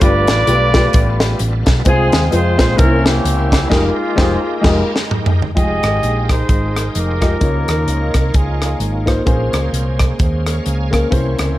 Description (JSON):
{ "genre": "uptempo gospel", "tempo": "130 BPM", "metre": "4/4", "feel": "swing 58% on 8ths", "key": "F minor", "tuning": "A4 = 440 Hz", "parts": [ { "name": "mellow horn section", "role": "melody", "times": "0.0-9.2 s", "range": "Ab3 to Eb5", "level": "-19 LUFS", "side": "equal", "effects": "none" }, { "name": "warm upright piano", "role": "accompaniment", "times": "0.0-11.6 s", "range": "G2 to G5", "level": "-19 LUFS", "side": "left 2 dB", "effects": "none" }, { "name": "bright tonewheel organ", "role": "sustained chords", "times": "0.0-11.6 s", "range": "G3 to Ab5", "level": "-27 LUFS", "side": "right 2 dB", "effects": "slow rotary speaker, overdrive, chorus vibrato" }, { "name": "hollow-body short-scale fingered electric bass", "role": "bass", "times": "0.0-11.6 s", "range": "F1 to F2", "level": "-18 LUFS", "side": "equal", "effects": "none" }, { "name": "tight funk drum kit", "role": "drums", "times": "0.0-11.5 s", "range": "crash cymbal, hi-hat, kick drum, rim click, snare drum, toms", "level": "-16 LUFS", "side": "equal", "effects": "none" }, { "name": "mellow French horn section", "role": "sustained chords", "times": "5.6-11.6 s", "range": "C3 to C5", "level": "-28 LUFS", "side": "right 1 dB", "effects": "none" } ], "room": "light reverb, small room ambience", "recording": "none", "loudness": "-13 LUFS", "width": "side -15 dB against mid", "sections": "0.0-5.6 A section; 5.6-11.6 B section", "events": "band accent 3.7-5.6; drum fill 4.6-5.6", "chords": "0.0 G9; 1.9 Fm/C; 2.8 C7b9; 3.7 Fm11; 5.6 Fm9; 7.4 Db69; 9.3 Bbm9", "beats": "| 0.02 0.48 0.94 1.40 | 1.86 2.33 2.79 3.25 | 3.71 4.17 4.63 5.09 | 5.56 6.02 6.48 6.94 | 7.41 7.87 8.34 8.80 | 9.26 9.73 10.19 10.65 | 11.12 11.58" }